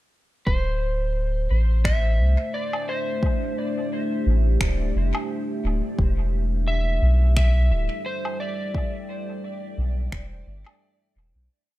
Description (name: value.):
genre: ambient dub.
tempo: 87 BPM.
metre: 4/4.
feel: swing 57% on 16ths.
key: unclear.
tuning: A4 = 439 Hz.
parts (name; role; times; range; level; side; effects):
electric slide guitar; melody; 0.5-11.1 s; C5 to E5; -30 LUFS; equal; dub echo.
deep dark ambient pad; sustained chords; 2.2-11.5 s; G3 to G5; -31 LUFS; left 1 dB; chorus, built-in reverb.
soft dub sub bass; bass; 0.5-11.5 s; D1 to C2; -20 LUFS; equal; none.
electronic kick drum; drums; 0.5-10.3 s; none; -24 LUFS; equal; none.
electronic finger snaps and woodblock; drums; 1.9-10.8 s; none; -33 LUFS; equal; dub echo.
room: little or no reverb.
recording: none.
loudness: -21 LUFS.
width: side -16 dB against mid.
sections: 0.5-11.5 groove.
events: fade-out 7.8-11.5.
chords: 0.5 D7(no3); 6.0 Em7.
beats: | 0.47 1.16 1.85 2.54 | 3.23 3.92 4.61 5.29 | 5.99 6.67 7.36 8.05 | 8.74 9.43 10.12 10.81.